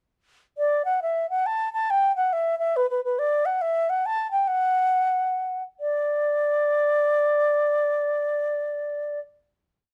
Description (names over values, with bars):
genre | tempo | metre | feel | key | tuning
celtic folk | 137 BPM | 3/4 | swing 62% on 8ths | D major | A4 = 441 Hz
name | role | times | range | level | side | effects
baroque flute | solo | 0.6-9.2 s | B4 to A5 | -24 LUFS | equal | none
room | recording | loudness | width
light reverb | dark, warm production | -24 LUFS | mono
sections
0.6-5.8 A section; 5.8-8.4 final note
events
none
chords
none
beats
| 0.57 1.01 1.44 | 1.88 2.31 2.75 | 3.19 3.62 4.06 | 4.49 4.93 5.37 | 5.81 6.24 6.68 | 7.12 7.56 8.00